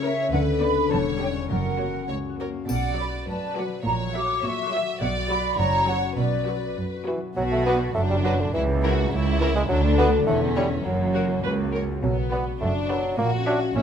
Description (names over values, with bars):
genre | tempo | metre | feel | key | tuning
cinematic, playful, whimsical film cue | 103 BPM | 2/4 | straight | B minor | A4 = 439 Hz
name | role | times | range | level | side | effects
rich chamber violin section | melody | 0.0-13.7 s | A#4 to E5 | -34 LUFS | left 4 dB | none
mellow flute section | second line | 0.0-6.8 s | D5 to D6 | -27 LUFS | right 1 dB | none
warm studio violin section | second line | 0.0-13.8 s | A#3 to E5 | -30 LUFS | left 3 dB | none
rich chamber viola section | accompaniment | 0.0-13.7 s | F#3 to C#5 | -33 LUFS | right 1 dB | none
concert harp | arpeggios | 0.0-13.8 s | E2 to E5 | -29 LUFS | left 6 dB | none
warm chamber cello section | bass | 0.0-13.8 s | C#2 to D3 | -28 LUFS | right 3 dB | none
rich chamber double bass section | bass | 0.3-13.8 s | E1 to D2 | -28 LUFS | right 3 dB | none
triangle | percussion | 2.7-3.8 s | none | -45 LUFS | left 3 dB | none
clear bassoon | accompaniment | 7.1-13.8 s | D3 to D4 | -26 LUFS | right 1 dB | none
room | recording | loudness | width
light reverb | close, detailed microphones | -21 LUFS | side -8 dB against mid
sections
0.0-7.4 A section; 7.4-13.8 A section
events
none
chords
0.3 Bm/D; 0.9 C#dim/E; 1.5 F#; 2.7 Bm; 3.9 F#7/A#; 5.0 Bm; 5.6 F#; 6.2 Bm; 8.5 A#dim/C#; 9.7 Bm/D; 10.3 C#dim/E; 10.8 F#; 12.0 Bm; 13.2 F#7/A#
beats
| 0.33 0.91 | 1.50 2.10 | 2.69 3.28 | 3.86 4.43 | 5.00 5.58 | 6.17 6.77 | 7.36 7.95 | 8.54 9.12 | 9.69 10.26 | 10.85 11.44 | 12.03 12.61 | 13.19 13.76